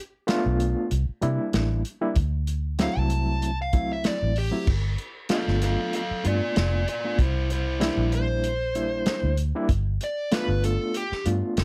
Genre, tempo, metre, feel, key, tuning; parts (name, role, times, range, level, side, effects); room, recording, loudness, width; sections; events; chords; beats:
straight-eighth soul blues; 96 BPM; 4/4; swing 54% on 16ths; G mixolydian; A4 = 441 Hz
overdriven reed electric piano; accompaniment; 0.3-11.6 s; F#3 to F4; -30 LUFS; equal; fast tremolo
warm soul drum kit; drums; 0.3-11.6 s; crash cymbal, hi-hat, kick drum, snare drum; -29 LUFS; equal
vintage muted fingered electric bass; bass; 0.5-11.6 s; F1 to C3; -28 LUFS; equal
dark smooth lead guitar; melody; 2.8-11.3 s; E4 to A5; -31 LUFS; equal; overdrive
little or no reverb; -25 LUFS; mono
0.0-4.7 A section; 4.7-11.6 A section
lead electric guitar solo 0.0-4.7, 4.7-11.6
0.0 G9 (rootless); 0.9 C9; 2.2 D9; 4.7 G9; 7.2 C9; 9.7 G9
0.29 0.92 1.55 | 2.17 2.80 3.43 4.05 | 4.68 5.31 5.94 6.56 | 7.19 7.82 8.45 9.07 | 9.70 10.33 10.95 11.58